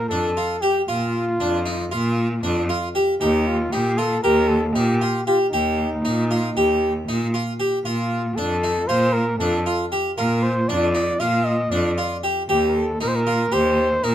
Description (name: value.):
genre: contemporary instrumental, chamber music in an uneven meter.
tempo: 233 BPM (eighths).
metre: 9/8.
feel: straight.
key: Eb lydian.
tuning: A4 = 441 Hz.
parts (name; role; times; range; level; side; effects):
mellow flugelhorn; melody; 0.0-14.1 s; Eb4 to F5; -24 LUFS; equal; none.
harpsichord; arpeggios; 0.1-14.1 s; D4 to G4; -23 LUFS; equal; none.
bright cello; bass; 0.1-14.1 s; Eb2 to Bb2; -23 LUFS; equal; none.
room: light reverb.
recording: close, detailed microphones.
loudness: -18 LUFS.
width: side -11 dB against mid.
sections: 0.0-14.1 A section.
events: none.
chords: 0.0 Bb; 3.2 Eb; 7.9 Bbmaj7; 12.5 Eb6.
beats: 0.12 0.38 0.63 | 0.89 1.15 1.41 1.67 1.92 2.18 2.44 2.70 2.96 | 3.21 3.47 3.73 3.99 4.25 4.50 4.76 5.02 5.28 | 5.53 5.79 6.05 6.31 6.57 6.82 7.08 7.34 7.60 | 7.86 8.11 8.37 8.63 8.89 9.14 9.40 9.66 9.92 | 10.17 10.43 10.69 10.95 11.21 11.46 11.72 11.98 12.24 | 12.49 12.75 13.01 13.27 13.52 13.78 14.04.